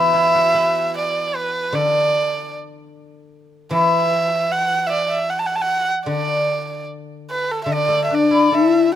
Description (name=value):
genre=chinese traditional, Chinese chamber ensemble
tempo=75 BPM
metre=4/4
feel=rubato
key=D gong mode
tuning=A4 = 445 Hz
part: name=warm erhu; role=melody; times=0.0-8.9 s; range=A4 to A5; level=-19 LUFS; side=right 2 dB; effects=none
part: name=guzheng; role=accompaniment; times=0.0-9.0 s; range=D3 to B4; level=-22 LUFS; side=left 2 dB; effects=none
part: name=mellow low xiao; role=second line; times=8.1-8.9 s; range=D4 to E4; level=-14 LUFS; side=left 5 dB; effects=none
room=light reverb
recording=close, detailed microphones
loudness=-16 LUFS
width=side -11 dB against mid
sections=0.0-9.0 A section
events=none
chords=none